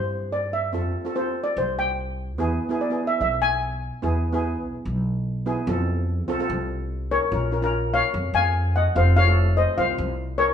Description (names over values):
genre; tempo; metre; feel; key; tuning
calypso; 146 BPM; 4/4; straight; Bb harmonic minor from 7.3 s; A4 = 441 Hz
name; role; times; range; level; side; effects
steel pan; melody; 0.0-3.8, 7.1-10.5 s; Bb4 to G#5; -23 LUFS; left 2 dB; none
steel pan; accompaniment; 0.0-10.3 s; A3 to C5; -28 LUFS; right 1 dB; none
upright bass; bass; 0.0-10.5 s; F1 to G2; -24 LUFS; equal; none
room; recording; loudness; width
wet large studio reverb, RT60 1.1 s; band playing live in one room, nothing above 10.5 kHz; -21 LUFS; side -8 dB against mid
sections
0.0-4.0 A section; 4.0-7.3 B section; 7.3-10.5 C section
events
steel pan solo 0.0-4.0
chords
0.0 C; 0.7 Fadd9; 2.4 E; 5.7 F; 7.3 Bbm7; 9.0 F